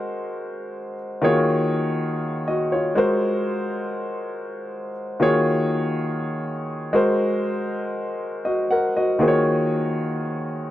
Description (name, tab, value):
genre	disco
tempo	121 BPM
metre	4/4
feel	swing 56% on 16ths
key	Eb dorian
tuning	A4 = 440 Hz
part	warm grand piano	solo	0.0-10.7 s	Eb3 to Gb5	-21 LUFS	left 1 dB	none
room	little or no reverb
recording	dry, close 1970s-style studio recording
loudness	-20 LUFS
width	side -13 dB against mid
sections	0.0-10.7 A section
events	none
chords	0.0 Ab9; 1.2 Ebm11; 3.0 Ab9; 5.2 Ebm11; 7.0 Ab9; 9.2 Ebm11